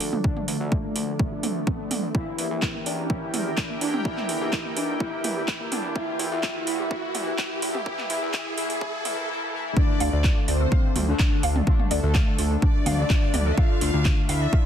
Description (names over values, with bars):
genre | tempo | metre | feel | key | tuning
melodic techno | 126 BPM | 4/4 | straight | D minor | A4 = 440 Hz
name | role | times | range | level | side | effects
sweeping resonant pad | sustained chords | 0.0-9.2 s | F3 to G5 | -35 LUFS | right 1 dB | chorus, sidechain pumping
warbly dusty pluck | arpeggios | 0.0-14.6 s | A3 to F5 | -34 LUFS | equal | ensemble chorus, vintage 12-bit sampler grit, sidechain pumping, ping-pong delay
analog synth brass | stabs | 0.0-14.7 s | D3 to E4 | -32 LUFS | left 5 dB | chorus, sidechain pumping, ping-pong delay
fat analog bass | bass | 0.0-14.5 s | D2 to E2 | -27 LUFS | equal | sidechain pumping, high-pass filter
house drum kit | drums | 0.0-14.4 s | handclaps, hi-hat, toms | -30 LUFS | right 2 dB | none
riser | sound effects | 0.4-9.3 s | none | -35 LUFS | right 2 dB | none
electronic kick drum | drums | 0.2-14.6 s | none | -22 LUFS | equal | none
wide unison lead | melody | 0.5-14.7 s | A3 to F4 | -31 LUFS | equal | lush chorus, vintage 12-bit sampler grit, sidechain pumping, ping-pong delay
rich studio violin section | second line | 9.8-14.7 s | A4 to F5 | -35 LUFS | equal | sidechain pumping, ping-pong delay
room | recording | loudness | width
light reverb | dense, heavily limited modern master, high-pass filter | -22 LUFS | side -9 dB against mid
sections
0.0-9.8 A section; 9.8-14.7 B section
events
build-up 0.0-9.8; filter sweep on analog polysynth 0.0-9.8; filter sweep 0.0-9.8; riser 0.4-9.3; drop 9.8-14.7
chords
0.0 Dm; 2.1 Edim; 9.8 Dm